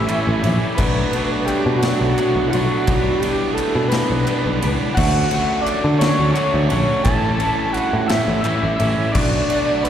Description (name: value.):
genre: indie rock.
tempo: 57 BPM (dotted quarters).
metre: 6/8.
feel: straight.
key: D major.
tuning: A4 = 441 Hz.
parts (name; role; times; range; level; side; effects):
fat analog lead; melody; 0.0-9.9 s; F#4 to A5; -22 LUFS; right 1 dB; slapback echo, digital delay.
overdriven tine electric piano; second line; 0.0-9.9 s; F#5 to A6; -31 LUFS; left 2 dB; fast tremolo, slapback echo.
electric guitar through a small old amp; riff; 0.0-9.9 s; E3 to G4; -25 LUFS; left 7 dB; slapback echo.
overdriven electric guitar; riff; 0.0-9.9 s; A2 to E4; -24 LUFS; right 6 dB; lush chorus, slapback echo.
picked electric bass; bass; 0.0-9.4 s; A1 to D3; -19 LUFS; equal; none.
big rock drum kit; drums; 0.1-9.9 s; crash cymbal, kick drum, ride cymbal, snare drum; -25 LUFS; equal; none.
group handclap; percussion; 0.1-9.9 s; none; -35 LUFS; left 2 dB; none.
room: little or no reverb.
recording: live gig heard through the venue's PA, recital hall reverb.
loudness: -16 LUFS.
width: side -9 dB against mid.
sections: 0.0-9.9 A section.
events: none.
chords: 0.0 A7; 0.8 Bm7; 2.9 G6/B; 5.0 Dmaj7; 7.1 A7; 9.2 Bm7.